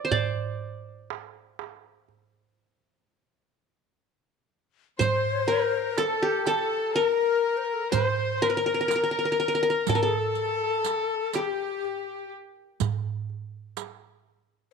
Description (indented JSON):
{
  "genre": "Arabic maqam ensemble",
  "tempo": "123 BPM (eighths)",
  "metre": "10/8",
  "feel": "straight",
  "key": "unclear",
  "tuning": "A4 = 441 Hz",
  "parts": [
    { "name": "qanun", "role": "melody", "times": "0.0-12.6 s", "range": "G4 to D5", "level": "-26 LUFS", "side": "left 1 dB", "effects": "none" },
    { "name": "darbuka", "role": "percussion", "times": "0.1-14.0 s", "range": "none", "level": "-31 LUFS", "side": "right 7 dB", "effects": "none" },
    { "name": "breathy ney", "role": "second line", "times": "5.0-12.3 s", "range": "G4 to C5", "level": "-29 LUFS", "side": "left 10 dB", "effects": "none" },
    { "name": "clear chamber violin section", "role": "second line", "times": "5.0-12.3 s", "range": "G4 to C5", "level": "-31 LUFS", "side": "equal", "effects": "none" },
    { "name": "riq", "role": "percussion", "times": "5.0-14.0 s", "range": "none", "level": "-34 LUFS", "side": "right 15 dB", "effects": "none" }
  ],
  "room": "moderate echo chamber reverb, RT60 1.3 s, small room ambience",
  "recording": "1960s-style stereo with parts hard left and right",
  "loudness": "-24 LUFS",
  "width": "side -5 dB against mid",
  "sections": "0.0-5.0 A section; 5.0-14.7 B section",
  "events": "break 2.6-5.0",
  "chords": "none"
}